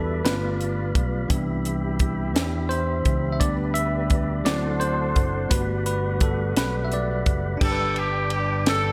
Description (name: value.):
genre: slow gospel.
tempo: 57 BPM (dotted quarters).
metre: 6/8.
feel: straight.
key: G major.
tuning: A4 = 440 Hz.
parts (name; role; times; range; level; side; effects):
bell-like tine electric piano; accompaniment; 0.0-8.9 s; G2 to E5; -30 LUFS; equal; none.
flute section; sustained chords; 0.0-7.6 s; D4 to D5; -38 LUFS; equal; none.
tonewheel organ; sustained chords; 0.0-8.9 s; G3 to D6; -36 LUFS; equal; slow rotary speaker, overdrive.
fingered electric bass; bass; 0.0-8.9 s; F#1 to E2; -29 LUFS; equal; none.
crisp fusion drum kit; drums; 0.3-8.8 s; crash cymbal, hi-hat, kick drum, ride cymbal, snare drum; -27 LUFS; equal; none.
clear horn section; melody; 7.6-8.9 s; D4 to A4; -27 LUFS; equal; none.
room: light reverb, small room ambience.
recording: none.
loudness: -24 LUFS.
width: mono.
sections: 0.0-7.6 A section; 7.6-8.9 B section.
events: tine electric piano solo 0.0-7.6.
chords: 0.3 G7; 1.3 Cmaj7; 3.4 G/D; 4.5 D7; 5.5 Gmaj7; 7.6 G.